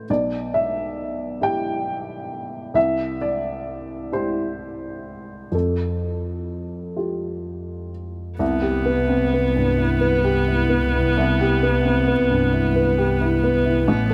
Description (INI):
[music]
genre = neoclassical piano and strings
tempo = 41-45 BPM (dotted quarters)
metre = 6/8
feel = rubato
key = unclear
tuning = A4 = 441 Hz
[part]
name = dark upright piano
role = accompaniment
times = 0.0-14.1 s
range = A1 to G5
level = -24 LUFS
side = equal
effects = none
[part]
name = rich viola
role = accompaniment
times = 8.4-14.1 s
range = B3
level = -26 LUFS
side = equal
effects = none
[part]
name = warm double bass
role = bass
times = 8.4-14.1 s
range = A1 to C2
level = -25 LUFS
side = equal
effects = none
[sound]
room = moderate plate reverb, RT60 3.4 s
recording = heard from further back in the room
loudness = -21 LUFS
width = mono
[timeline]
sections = 0.0-8.4 A section; 8.4-14.1 B section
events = none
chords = 0.1 Em/B; 2.8 C; 5.5 Fadd9; 8.4 Cmaj7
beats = | 0.08 1.42 | 2.75 4.12 | 5.53 6.97 | 8.41 9.78 | 11.16 12.52 | 13.88